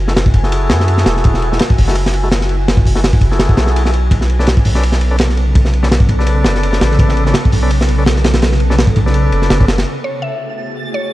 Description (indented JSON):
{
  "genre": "drum and bass, jungle",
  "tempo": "167 BPM",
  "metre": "4/4",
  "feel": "swing 54% on 16ths",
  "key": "F# minor",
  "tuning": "A4 = 440 Hz",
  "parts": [
    { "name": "granular cloud pad", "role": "sustained chords", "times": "0.0-11.1 s", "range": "C#3 to G#5", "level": "-22 LUFS", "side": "right 1 dB", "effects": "built-in reverb, vintage 12-bit sampler grit" },
    { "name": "soft dub sub bass", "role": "bass", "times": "0.0-9.8 s", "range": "E1 to F#2", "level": "-14 LUFS", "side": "equal", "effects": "none" },
    { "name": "tonewheel organ", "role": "stabs", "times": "0.1-9.7 s", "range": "C#3 to D5", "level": "-21 LUFS", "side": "left 2 dB", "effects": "overdrive, dub echo" },
    { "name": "crunchy breakbeat drum kit", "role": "drums", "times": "0.1-9.9 s", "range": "hi-hat, kick drum, ride cymbal, snare drum", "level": "-14 LUFS", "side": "equal", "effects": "none" },
    { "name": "twinkling granular texture", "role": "texture", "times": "10.3-11.1 s", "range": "A6", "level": "-29 LUFS", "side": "right 4 dB", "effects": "built-in reverb" },
    { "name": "mallet-like synth pluck", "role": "melody", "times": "10.0-11.1 s", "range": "C#5 to E5", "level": "-22 LUFS", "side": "equal", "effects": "chorus, vintage 12-bit sampler grit, dub echo" }
  ],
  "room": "light reverb, small room ambience",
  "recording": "dark, warm production",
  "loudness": "-11 LUFS",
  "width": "side -16 dB against mid",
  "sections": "0.0-9.9 A section; 9.9-11.1 B section",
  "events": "none",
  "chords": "0.0 F#m9; 4.1 Bm9; 9.9 F#m9"
}